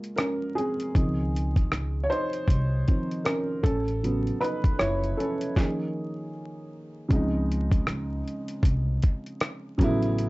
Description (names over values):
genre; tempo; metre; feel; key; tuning
lo-fi hip hop; 78 BPM; 4/4; swing 58% on 16ths; Db major; A4 = 440 Hz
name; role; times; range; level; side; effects
dark upright piano; accompaniment; 0.0-10.3 s; C#3 to Eb5; -28 LUFS; right 1 dB; cassette tape, plate reverb
dusty soul sampler-style drum kit; drums; 0.0-10.3 s; hi-hat, kick drum, rim click, snare drum; -24 LUFS; equal; none
upright bass; bass; 1.0-10.3 s; F#1 to Db2; -28 LUFS; equal; none
room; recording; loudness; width
light reverb; dark, warm production, vinyl crackle, nothing above 7.8 kHz; -24 LUFS; side -21 dB against mid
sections
0.0-7.1 A section; 7.1-10.3 A section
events
upright piano solo 0.0-7.1; stop 5.6-7.1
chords
0.0 Gbmaj9; 0.9 Dbmaj9; 3.6 A69; 5.6 Db69; 7.1 Dbmaj9; 9.8 A69